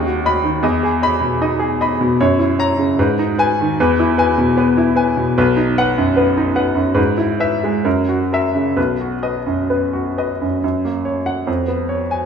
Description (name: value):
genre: classical, romantic character piece for solo piano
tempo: 63-78 BPM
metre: 2/4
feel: rubato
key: B major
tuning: A4 = 441 Hz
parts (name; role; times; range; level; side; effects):
- clear baby grand piano; solo; 0.0-12.3 s; B1 to B5; -14 LUFS; equal; none
room: wet recital hall reverb, RT60 1.6 s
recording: minimal, uncompressed stereo recording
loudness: -14 LUFS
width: side -7 dB against mid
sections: 0.0-10.6 A section; 10.6-12.3 B section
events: none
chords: 0.0 B/D#; 0.6 Emaj7; 2.2 F#7; 3.0 G#m; 3.8 E; 5.4 B; 7.0 E/G#; 7.9 F#7; 8.8 B; 10.6 F#; 11.5 C#7/E#